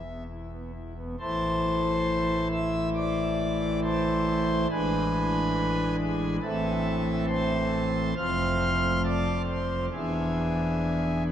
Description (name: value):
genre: classical, chorale-style piece for pipe organ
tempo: 68 BPM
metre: 4/4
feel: rubato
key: A minor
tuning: A4 = 440 Hz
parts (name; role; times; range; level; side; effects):
- pipe organ, foundations; solo; 0.0-11.3 s; E1 to F6; -25 LUFS; equal; none
room: wet huge ambient reverb, RT60 6.9 s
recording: in a vast, echoing space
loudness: -24 LUFS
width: side -10 dB against mid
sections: 0.0-1.2 A section; 1.2-11.3 B section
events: none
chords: 0.0 E5; 1.2 Am; 4.7 E7/A; 6.4 Am; 8.2 F; 9.9 E7